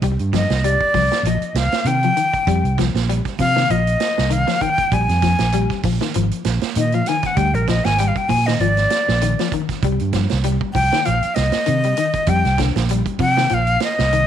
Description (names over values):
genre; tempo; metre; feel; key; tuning
afrobeat; 98 BPM; 4/4; swing 55% on 16ths; C minor; A4 = 438 Hz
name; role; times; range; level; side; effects
semi-hollow electric guitar; arpeggios; 0.0-14.3 s; D3 to G3; -24 LUFS; left 11 dB; lush chorus, slapback echo
fingered electric bass; bass; 0.0-14.2 s; Ab1 to C3; -19 LUFS; right 2 dB; none
vintage drum kit; drums; 0.0-14.3 s; hi-hat, kick drum, snare drum; -24 LUFS; right 9 dB; none
breathy bright jazz flute; melody; 0.4-14.3 s; Bb4 to Ab5; -19 LUFS; left 1 dB; slapback echo
room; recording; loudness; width
light reverb, small room ambience; 1960s-style stereo with parts hard left and right; -16 LUFS; side -10 dB against mid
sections
0.0-14.3 A section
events
flute solo 0.0-14.3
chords
0.0 Cm7; 4.9 Bb7sus4; 9.8 Cm7